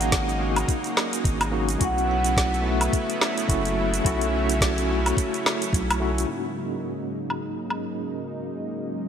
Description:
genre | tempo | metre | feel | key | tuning
sunset chillout | 107 BPM | 4/4 | swing 56% on 16ths | unclear | A4 = 440 Hz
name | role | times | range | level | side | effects
vibraphone with soft mallets | melody | 0.0-5.7 s | E5 to F#5 | -31 LUFS | equal | digital delay
tine electric piano | accompaniment | 0.0-9.1 s | G#2 to F#4 | -28 LUFS | moving between left 4 dB and right 4 dB | fast stereo tremolo, auto-pan, low-pass filter, digital delay
lush unison pad | sustained chords | 0.0-9.1 s | C#3 to E4 | -29 LUFS | equal | chorus
round analog bass | bass | 0.0-6.3 s | F#1 to B1 | -27 LUFS | equal | none
smooth R&B drum kit | drums | 0.0-7.8 s | cabasa, hi-hat, snare drum, woodblock | -27 LUFS | equal | studio reverb
electronic kick drum | drums | 0.1-5.9 s | none | -25 LUFS | equal | studio reverb
room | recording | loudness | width
moderate lush hall reverb, RT60 2.7 s | bright 1980s-style digital production | -22 LUFS | side -8 dB against mid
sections
0.0-6.3 A section; 6.3-9.1 B section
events
filter sweep on tine electric piano 6.3-9.1; filter sweep on analog synth pad 6.3-9.1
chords
0.0 G#9sus4; 1.8 B9sus4; 6.3 G#9sus4

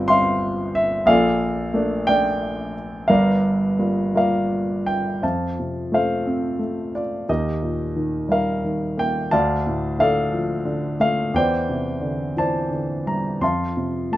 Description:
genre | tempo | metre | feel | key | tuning
classical, lyrical solo piano | 56-61 BPM (dotted quarters) | 6/8 | rubato | F major | A4 = 440 Hz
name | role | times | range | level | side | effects
warm grand piano | solo | 0.0-14.2 s | G1 to C6 | -19 LUFS | equal | none
room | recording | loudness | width
light reverb | close, detailed microphones | -19 LUFS | side -15 dB against mid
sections
0.0-5.2 A section; 5.2-14.2 B section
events
none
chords
0.0 G7sus4; 1.1 Bbmaj7; 3.1 Gm7; 5.2 F; 7.3 Eb; 9.3 Dm; 11.3 Cadd9/E; 13.4 F

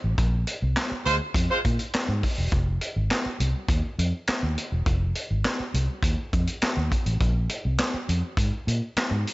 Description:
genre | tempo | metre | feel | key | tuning
funk | 102 BPM | 4/4 | straight | F dorian | A4 = 440 Hz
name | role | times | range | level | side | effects
vintage muted fingered electric bass | bass | 0.0-9.2 s | E1 to Bb2 | -25 LUFS | equal | none
vintage drum kit | drums | 0.2-9.3 s | handclaps, hi-hat, kick drum, snare drum | -26 LUFS | equal | none
mellow horn section | second line | 1.1-1.6 s | Ab3 to C5 | -25 LUFS | right 2 dB | none
room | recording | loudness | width
studio reverb | nothing above 7.8 kHz | -23 LUFS | side -19 dB against mid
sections
0.0-9.3 A section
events
band accent 0.2-2.5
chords
0.0 Bb9; 2.5 Fm7; 7.2 Bbsus2

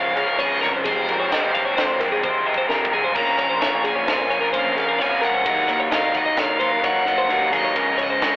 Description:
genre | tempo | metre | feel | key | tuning
math rock and midwest emo | 130 BPM | 5/4 | straight | unclear | A4 = 440 Hz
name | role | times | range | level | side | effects
biting overdriven guitar | melody | 0.0-8.4 s | C5 to Bb5 | -23 LUFS | equal | none
twelve-string electric guitar | arpeggios | 0.0-8.4 s | Ab4 to Gb5 | -24 LUFS | left 1 dB | analog delay
crunchy overdriven guitar | riff | 0.0-8.4 s | F2 to Eb4 | -21 LUFS | equal | spring reverb
fuzz picked electric bass | bass | 0.0-8.4 s | Ab1 to F2 | -32 LUFS | equal | overdrive
crisp fusion drum kit | drums | 0.2-8.3 s | crash cymbal, kick drum, ride cymbal, snare drum, toms | -26 LUFS | equal | none
room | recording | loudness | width
moderate studio reverb, RT60 0.5 s | rough rehearsal-room recording, telephone sound | -17 LUFS | side -20 dB against mid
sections
0.0-8.4 A section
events
drum fill 2.2-3.2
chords
0.0 Dbmaj7; 0.9 Fm7; 3.2 Bbm9; 5.5 Ebm11; 7.8 Dbmaj7

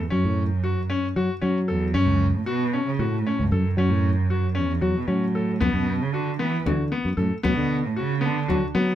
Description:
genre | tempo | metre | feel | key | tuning
contemporary instrumental, chamber music in an uneven meter | 230 BPM (eighths) | 7/8 | straight | F# minor | A4 = 440 Hz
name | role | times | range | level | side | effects
dark cello | melody | 0.0-8.5 s | E2 to E3 | -25 LUFS | right 3 dB | none
bright grand piano | arpeggios | 0.1-8.9 s | B3 to A4 | -27 LUFS | left 5 dB | none
sustaining fretless electric bass | bass | 0.1-8.9 s | C#2 to F#3 | -24 LUFS | equal | none
frame drum | percussion | 5.6-8.9 s | none | -29 LUFS | left 2 dB | none
room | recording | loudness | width
light reverb | minimal, uncompressed stereo recording | -21 LUFS | side -11 dB against mid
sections
0.0-8.9 A section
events
none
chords
0.0 F#m; 5.6 Bm/F#

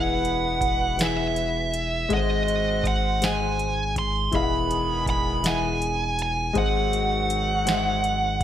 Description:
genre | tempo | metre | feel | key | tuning
slow six-eight R&B | 54 BPM (dotted quarters) | 6/8 | straight | E major | A4 = 440 Hz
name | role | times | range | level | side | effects
high-gain lead guitar | melody | 0.0-8.4 s | D#5 to B#5 | -25 LUFS | right 2 dB | distortion
warm grand piano | accompaniment | 0.0-8.4 s | E3 to G#5 | -28 LUFS | left 7 dB | none
mellow horn section | stabs | 0.0-8.4 s | D#3 to B#4 | -34 LUFS | right 5 dB | none
rubbery square bass | bass | 0.0-8.4 s | E1 to G#1 | -29 LUFS | equal | none
booming analog drum machine | drums | 0.2-8.4 s | hi-hat, kick drum, snare drum | -28 LUFS | equal | overdrive
room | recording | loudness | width
moderate plate reverb, RT60 1.9 s | bright 1980s-style digital production | -21 LUFS | side -10 dB against mid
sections
0.0-8.4 A section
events
none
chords
0.0 Emaj9; 2.1 G#7; 4.3 Emaj9; 6.6 G#7

